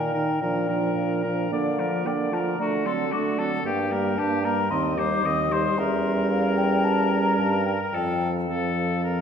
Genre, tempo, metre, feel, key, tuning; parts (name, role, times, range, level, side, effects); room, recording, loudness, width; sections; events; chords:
quick classical-period movement for wind quintet; 112 BPM; 4/4; straight; A4 = 440 Hz
mellow hollow concert flute; melody; 0.0-9.2 s; E5 to Eb6; -28 LUFS; left 5 dB
clear oboe; second line; 0.0-9.2 s; F#4 to Eb5; -29 LUFS; left 3 dB
mellow French horn; accompaniment; 0.0-9.2 s; Eb3 to Bb3; -28 LUFS; equal
mellow clarinet; accompaniment; 0.0-9.2 s; Bb3 to F4; -30 LUFS; right 8 dB
clear bassoon; bass; 0.0-9.2 s; Eb2 to D3; -28 LUFS; right 2 dB
wet scoring stage reverb, RT60 2.1 s; recorded in a church or concert hall; -22 LUFS; side -7 dB against mid
0.0-9.2 A section
0.4 Bb; 1.5 Bb/D; 2.6 D7; 3.6 Gm; 4.7 Cm/Eb; 5.8 Edim7; 7.9 F